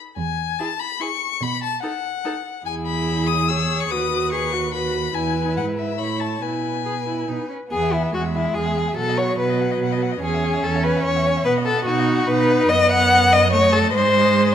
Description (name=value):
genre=quick classical-period movement for string quartet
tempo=144 BPM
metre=3/4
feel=straight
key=E major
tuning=A4 = 438 Hz
part: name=dark violin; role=melody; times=0.2-14.5 s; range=D#5 to E6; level=-26 LUFS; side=left 9 dB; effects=none
part: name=dark cello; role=bass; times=0.2-14.5 s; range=D#2 to B2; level=-24 LUFS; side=right 5 dB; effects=none
part: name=warm violin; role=second line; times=0.6-14.5 s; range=E4 to F#5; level=-20 LUFS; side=left 2 dB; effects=none
part: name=warm viola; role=accompaniment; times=0.6-14.5 s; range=F#3 to G#4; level=-25 LUFS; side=right 3 dB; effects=none
room=moderate recital hall reverb, RT60 1.3 s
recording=none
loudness=-18 LUFS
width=side -9 dB against mid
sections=0.0-7.7 A section; 7.7-14.5 A section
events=none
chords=0.2 E; 1.4 B7; 2.7 E; 3.9 B/D#; 5.1 E; 6.0 A; 6.4 E/B; 7.3 B; 7.7 E; 9.0 B; 10.2 E; 11.5 B; 12.7 D#dim/F#; 13.9 G#